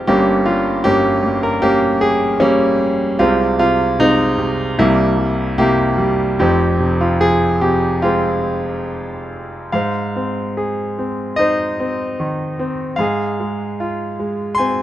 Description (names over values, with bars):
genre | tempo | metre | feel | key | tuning
classical, lyrical solo piano | 70-77 BPM | 4/4 | rubato | F minor, Ab major from 9.7 s | A4 = 435 Hz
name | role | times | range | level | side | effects
bright concert grand piano | solo | 0.0-14.8 s | F1 to C6 | -15 LUFS | equal | none
room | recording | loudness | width
light reverb | close, detailed microphones | -15 LUFS | side -13 dB against mid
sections
0.0-9.7 A section; 9.7-14.8 B section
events
none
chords
0.1 Gdim; 3.2 Ab6/C; 4.8 C7; 6.4 Fm; 9.7 Ab; 13.0 Fm/Ab